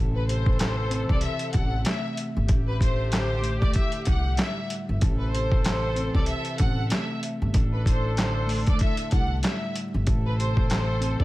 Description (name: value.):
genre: hip hop, boom-bap hip-hop.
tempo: 95 BPM.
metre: 4/4.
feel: swing 58% on 16ths.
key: A dorian.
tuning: A4 = 440 Hz.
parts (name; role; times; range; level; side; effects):
mellow tine electric piano; accompaniment; 0.0-11.2 s; A2 to C4; -34 LUFS; equal; medium stereo tremolo, high-pass filter, low-pass filter.
warm saxophone section; stabs; 0.0-11.2 s; D3 to A4; -36 LUFS; left 2 dB; high-pass filter, low-pass filter, tape echo.
upright bass; bass; 0.0-11.2 s; G1 to D2; -26 LUFS; equal; none.
bright studio violin section; melody; 0.1-11.2 s; B4 to F#5; -32 LUFS; left 1 dB; high-pass filter, low-pass filter, tape echo.
dusty soul sampler-style drum kit; drums; 0.3-11.2 s; handclaps, hi-hat, kick drum, snare drum; -24 LUFS; equal; overdrive.
room: small room ambience.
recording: vinyl crackle.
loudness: -22 LUFS.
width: side -18 dB against mid.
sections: 0.0-11.2 A section.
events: none.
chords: 0.0 Am; 2.5 Dsus4/A; 5.0 Am; 7.5 Dsus4/A; 10.1 Am.